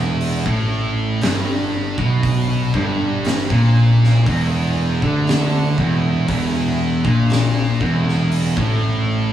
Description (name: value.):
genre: stoner and doom metal.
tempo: 59 BPM.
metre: 4/4.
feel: straight.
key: E minor.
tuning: A4 = 439 Hz.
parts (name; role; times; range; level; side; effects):
high-gain distorted guitar; riff; 0.0-9.3 s; E2 to D3; -24 LUFS; right 1 dB; distortion.
thick fuzz guitar; riff; 0.0-9.3 s; E2 to D3; -20 LUFS; left 2 dB; distortion.
thick fuzz guitar; riff; 0.0-9.3 s; E2 to D3; -22 LUFS; right 4 dB; distortion.
fuzz fingered electric bass; bass; 0.0-9.3 s; E1 to D2; -24 LUFS; equal; overdrive, tube saturation.
oversized low-tuned drum kit; drums; 0.2-8.8 s; hi-hat, kick drum, snare drum; -24 LUFS; equal; none.
room: moderate studio reverb, RT60 0.7 s.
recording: band playing live in one room, small room ambience.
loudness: -15 LUFS.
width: side -11 dB against mid.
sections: 0.0-9.3 A section.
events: none.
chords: 0.0 Em.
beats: 0.21 1.22 | 2.23 3.25 4.26 5.27 | 6.29 7.30 8.31.